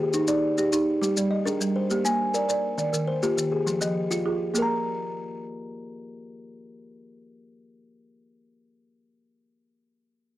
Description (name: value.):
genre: southern african traditional, mbira-style interlocking cycle.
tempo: 136 BPM (dotted quarters).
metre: 12/8.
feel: straight.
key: unclear.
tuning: A4 = 440 Hz.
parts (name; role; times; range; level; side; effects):
buzzing kalimba; arpeggios; 0.0-9.3 s; Eb3 to Bb5; -27 LUFS; left 2 dB; plate reverb.
folk marimba with medium mallets; arpeggios; 0.0-9.3 s; Eb3 to Bb5; -26 LUFS; right 3 dB; plate reverb.
maracas; percussion; 0.1-4.7 s; none; -32 LUFS; left 2 dB; none.
room: moderate small room reverb, RT60 0.5 s.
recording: dry, gritty hardware recording, cassette tape.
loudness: -23 LUFS.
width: side -14 dB against mid.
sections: 0.0-4.6 A section; 4.6-8.1 B section.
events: none.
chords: 0.0 Eb; 1.0 Gm; 1.9 Bb; 2.8 Eb; 3.7 Fm; 4.6 N.C..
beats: 0.14 0.58 | 1.02 1.46 1.90 2.34 | 2.78 3.23 3.67 4.11 | 4.55 5.00 5.44 5.88 | 6.32 6.77 7.21 7.65.